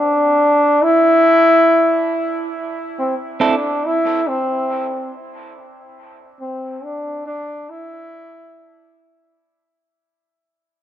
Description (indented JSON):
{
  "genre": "reggae",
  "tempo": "free time",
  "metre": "none",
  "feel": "none",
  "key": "unclear",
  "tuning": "A4 = 440 Hz",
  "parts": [
    { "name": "bright trombone", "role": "melody", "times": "0.0-9.4 s", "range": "C4 to E4", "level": "-15 LUFS", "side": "equal", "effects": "dub echo" },
    { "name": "semi-hollow electric guitar", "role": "accompaniment", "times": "3.4-3.5 s", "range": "C4 to A4", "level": "-22 LUFS", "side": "right 4 dB", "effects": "spring reverb, dub echo" }
  ],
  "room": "light reverb, small room reverb",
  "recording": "none",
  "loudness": "-14 LUFS",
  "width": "side -11 dB against mid",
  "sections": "0.0-3.0 A section; 3.0-9.8 B section",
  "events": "break 0.0-3.0, 3.0-9.8; fade-out 3.0-9.8",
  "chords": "0.0 N.C.; 3.0 C6; 6.4 N.C.",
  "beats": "free time"
}